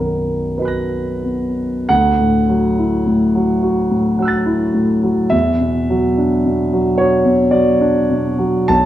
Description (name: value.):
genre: classical, impressionist solo piano.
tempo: 44-57 BPM.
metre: 3/4.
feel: rubato.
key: D major.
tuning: A4 = 440 Hz.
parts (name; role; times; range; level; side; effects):
warm concert grand piano; solo; 0.0-8.9 s; B1 to A#6; -13 LUFS; equal; none.
room: moderate recital hall reverb, RT60 1.6 s.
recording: dark, warm production.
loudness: -14 LUFS.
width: side -12 dB against mid.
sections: 0.0-1.9 A section; 1.9-8.9 B section.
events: none.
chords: 0.0 Bmaj7; 1.9 Dadd9; 5.3 Esus2.